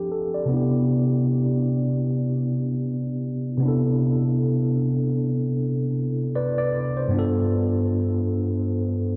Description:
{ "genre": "hip hop", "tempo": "free time", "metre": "none", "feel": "none", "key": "C major", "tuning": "A4 = 440 Hz", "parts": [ { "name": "tine electric piano", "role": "solo", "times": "0.0-9.2 s", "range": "G2 to D5", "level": "-23 LUFS", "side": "equal", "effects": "cassette tape" } ], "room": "wet lush hall reverb, RT60 2.8 s", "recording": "dreamy mix soaked in reverb, cassette tape, low-pass filter", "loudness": "-23 LUFS", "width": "mono", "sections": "0.0-7.1 A section; 7.1-9.2 B section", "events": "filter sweep 0.0-7.1; tine electric piano fill 6.0-7.1", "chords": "0.0 F6; 0.5 Cmaj9; 7.1 G9", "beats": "free time" }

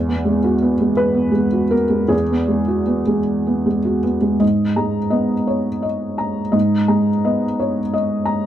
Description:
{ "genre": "neoclassical minimalist piano", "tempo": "52-59 BPM (dotted quarters)", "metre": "6/8", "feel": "rubato", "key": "G# minor", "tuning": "A4 = 440 Hz", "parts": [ { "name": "felt-muted upright piano", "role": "solo", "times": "0.0-8.5 s", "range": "E2 to A#5", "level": "-16 LUFS", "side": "equal", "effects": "none" } ], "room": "small room ambience", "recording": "dry, close 1970s-style studio recording", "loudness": "-16 LUFS", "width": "side -11 dB against mid", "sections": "0.0-4.4 A section; 4.4-8.5 B section", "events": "none", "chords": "0.0 Eadd9; 4.4 G#madd9", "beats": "0.99 | 2.12 3.28 | 4.42 5.48 | 6.54 7.59" }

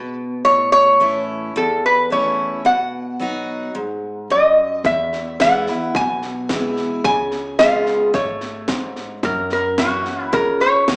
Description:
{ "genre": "honky-tonk and classic country", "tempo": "109 BPM", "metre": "4/4", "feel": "straight", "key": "E major", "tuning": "A4 = 442 Hz", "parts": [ { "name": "lap resonator guitar", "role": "melody", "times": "0.0-11.0 s", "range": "F#4 to G#5", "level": "-15 LUFS", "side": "equal", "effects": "none" }, { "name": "picked steel-string acoustic guitar", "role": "accompaniment", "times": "0.0-11.0 s", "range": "E2 to G#4", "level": "-23 LUFS", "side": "equal", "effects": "slapback echo" }, { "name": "upright bass", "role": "bass", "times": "4.8-11.0 s", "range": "G#1 to F#2", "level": "-34 LUFS", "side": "equal", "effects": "none" }, { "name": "house drum kit", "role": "drums", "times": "4.8-11.0 s", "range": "hi-hat, kick drum, snare drum", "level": "-24 LUFS", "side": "equal", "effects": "overdrive" } ], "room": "light reverb, small room ambience", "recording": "live gig heard through the venue's PA, club reverb, small speaker sound", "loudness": "-15 LUFS", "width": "side -34 dB against mid", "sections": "0.0-11.0 A section", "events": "none", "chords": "0.5 A; 2.7 B; 4.8 E; 7.0 C#7; 9.2 F#7", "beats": "| 0.46 1.01 1.56 2.11 | 2.65 3.20 3.75 4.30 | 4.85 5.40 5.95 6.50 | 7.04 7.59 8.14 8.69 | 9.24 9.79 10.33 10.88" }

